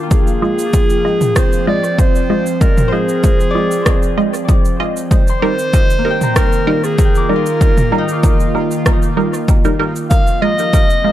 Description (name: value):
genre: ambient dub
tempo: 96 BPM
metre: 4/4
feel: straight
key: F dorian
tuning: A4 = 437 Hz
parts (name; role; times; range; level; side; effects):
- airy breathy pad; sustained chords; 0.0-11.1 s; Eb3 to G5; -21 LUFS; right 1 dB; chorus
- Celtic harp; arpeggios; 0.0-10.7 s; Bb3 to D6; -24 LUFS; left 4 dB; dub echo
- backwards swelling texture; texture; 0.0-0.1, 11.0-11.1 s; C4 to F5; -29 LUFS; right 5 dB; none
- warm clarinet; melody; 0.1-11.1 s; Ab4 to F5; -19 LUFS; equal; dub echo
- electronic kick drum; drums; 0.1-10.9 s; none; -13 LUFS; equal; overdrive, small room ambience
- organic electronic drum kit; drums; 0.1-11.0 s; cabasa, rim click, toms; -22 LUFS; right 1 dB; overdrive, small room ambience, dub echo
- filtered dub chord stab; stabs; 0.4-11.1 s; G3 to Eb5; -20 LUFS; right 2 dB; phaser, cassette tape, dub echo
room: light reverb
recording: none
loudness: -12 LUFS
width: side -13 dB against mid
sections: 0.1-11.1 A section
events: none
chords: 0.1 Fm7; 5.1 Eb; 10.1 Fm7